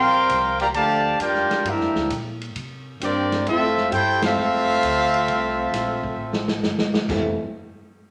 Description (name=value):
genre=jazz, big band swing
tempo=132 BPM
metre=4/4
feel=swing 68% on 8ths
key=F major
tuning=A4 = 440 Hz
part: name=clear trumpet section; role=melody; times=0.0-6.6 s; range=C4 to C6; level=-22 LUFS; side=equal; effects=none
part: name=dark trombone section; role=second line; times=0.0-7.4 s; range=F2 to G4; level=-29 LUFS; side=equal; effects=none
part: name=upright bass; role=bass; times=0.0-7.4 s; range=F1 to C3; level=-36 LUFS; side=equal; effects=none
part: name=swinging big-band drum kit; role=drums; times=0.3-7.2 s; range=china cymbal, hi-hat, kick drum, ride cymbal, snare drum, toms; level=-30 LUFS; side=equal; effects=none
room=wet large studio reverb, RT60 0.9 s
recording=none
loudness=-22 LUFS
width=mono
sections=0.0-7.1 A section; 7.1-8.1 B section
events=band accent 4.1; drum fill 6.2-7.1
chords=0.0 Bb6; 1.6 Gm7; 2.6 C5; 3.5 Fmaj7